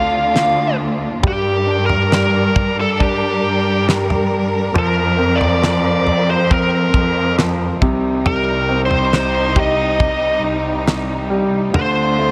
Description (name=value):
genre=pop ballad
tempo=69 BPM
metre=4/4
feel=straight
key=G minor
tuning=A4 = 440 Hz
part: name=bluesy overdriven lead guitar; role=melody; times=0.0-12.3 s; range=G4 to F5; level=-21 LUFS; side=equal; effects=distortion, delay
part: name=warm grand piano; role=accompaniment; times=0.0-12.3 s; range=C3 to A4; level=-24 LUFS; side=equal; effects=none
part: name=warm studio string section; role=sustained chords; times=0.0-12.3 s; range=C3 to Bb4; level=-26 LUFS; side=equal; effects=none
part: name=muted symphonic cello section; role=bass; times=0.0-12.3 s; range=C2 to G2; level=-23 LUFS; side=equal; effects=none
part: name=damped 70s drum kit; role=drums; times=0.4-11.9 s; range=kick drum, snare drum, toms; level=-20 LUFS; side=equal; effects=none
room=light reverb, studio reverb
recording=none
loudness=-16 LUFS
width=mono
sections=0.0-12.3 A section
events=none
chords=0.0 Dm7; 1.2 Gm; 4.8 Fsus4; 7.8 Cm; 11.7 Dm7